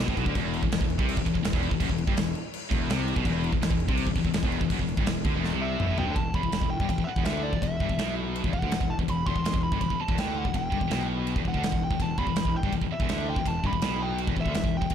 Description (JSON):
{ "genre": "heavy metal", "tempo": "165 BPM", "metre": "4/4", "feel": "straight", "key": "E minor", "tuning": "A4 = 440 Hz", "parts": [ { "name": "distorted electric guitar", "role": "riff", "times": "0.0-14.9 s", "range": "E2 to D3", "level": "-31 LUFS", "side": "left 11 dB", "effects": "distortion" }, { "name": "heavy high-gain guitar", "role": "riff", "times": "0.0-14.9 s", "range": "E2 to D3", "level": "-35 LUFS", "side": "right 15 dB", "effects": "distortion" }, { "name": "scooped high-gain guitar", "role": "riff", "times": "0.0-6.2 s", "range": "E2 to D3", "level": "-36 LUFS", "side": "right 1 dB", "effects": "distortion" }, { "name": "fuzz fingered electric bass", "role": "bass", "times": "0.0-14.9 s", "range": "E1 to D2", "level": "-32 LUFS", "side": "right 1 dB", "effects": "overdrive" }, { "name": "big rock drum kit", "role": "drums", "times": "0.1-14.9 s", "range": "crash cymbal, kick drum, ride cymbal, snare drum, toms", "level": "-28 LUFS", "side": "right 1 dB", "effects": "none" }, { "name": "dark smooth lead guitar", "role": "melody", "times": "5.6-14.9 s", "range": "D5 to C6", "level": "-32 LUFS", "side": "right 1 dB", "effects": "overdrive, digital delay" } ], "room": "studio reverb", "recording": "dark, warm production", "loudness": "-24 LUFS", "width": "side -9 dB against mid", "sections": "0.0-6.2 A section; 6.2-14.9 B section", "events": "drum fill 5.4-6.2", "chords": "0.0 E5; 6.2 Em" }